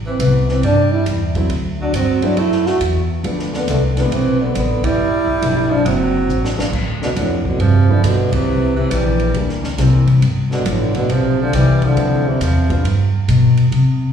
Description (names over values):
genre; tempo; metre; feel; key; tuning
jazz, small-group swing and bop; 138 BPM; 4/4; swing 66% on 8ths; G mixolydian; A4 = 440 Hz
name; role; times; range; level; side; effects
upright bass; bass; 0.0-14.1 s; F#1 to C3; -16 LUFS; equal; none
breathy trombone; melody; 0.1-12.8 s; A2 to F#4; -18 LUFS; equal; slapback echo
bright tenor saxophone; second line; 0.1-12.8 s; D3 to A3; -23 LUFS; right 3 dB; slapback echo
compact cocktail drum kit; drums; 0.2-13.9 s; crash cymbal, hi-hat, kick drum, ride cymbal, snare drum; -26 LUFS; equal; none
warm upright piano; accompaniment; 1.4-12.8 s; G2 to F4; -24 LUFS; right 2 dB; slapback echo
room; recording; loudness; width
light reverb; live gig heard through the venue's PA, recital hall reverb, studio ambience; -14 LUFS; side -8 dB against mid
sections
0.0-6.7 A section; 6.7-14.1 A section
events
band accent 4.8, 8.3; drum fill 6.3-6.7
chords
0.0 Am7; 1.5 D; 3.2 Dm13; 4.1 Amadd9; 5.0 G7; 5.9 F#dim; 6.7 G7; 8.5 C7; 10.2 G7; 12.0 Dm7; 12.8 G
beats
0.20 0.63 1.06 | 1.50 1.94 2.37 2.81 | 3.24 3.68 4.12 4.55 | 4.99 5.42 5.86 6.29 | 6.73 7.17 7.61 8.04 | 8.48 8.91 9.35 9.79 | 10.23 10.66 11.10 11.54 | 11.97 12.41 12.85 13.29 | 13.72